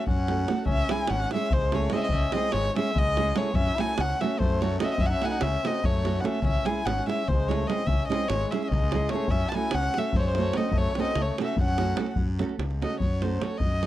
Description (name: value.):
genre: balkan folk, Balkan wedding band.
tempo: 292 BPM (eighths).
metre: 7/8.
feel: straight.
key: F# dorian sharp4.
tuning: A4 = 440 Hz.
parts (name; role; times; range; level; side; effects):
dark violin; melody; 0.0-13.9 s; B#4 to A5; -29 LUFS; left 1 dB; none.
dark trumpet; second line; 0.0-12.1 s; G#3 to F#4; -34 LUFS; left 5 dB; none.
nylon-string guitar; accompaniment; 0.0-13.9 s; G#3 to A4; -31 LUFS; right 5 dB; none.
fuzz fingered electric bass; bass; 0.1-13.9 s; G#1 to F#2; -29 LUFS; equal; overdrive.
davul; percussion; 0.1-13.9 s; none; -29 LUFS; equal; none.
room: small room reverb.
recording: dry, close 1970s-style studio recording.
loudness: -23 LUFS.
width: side -14 dB against mid.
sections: 0.7-12.2 A section; 12.2-13.9 B section.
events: violin solo 12.2-13.9.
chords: 0.0 F#m; 0.7 C#m; 3.6 F#m; 6.4 C#m; 9.3 F#m.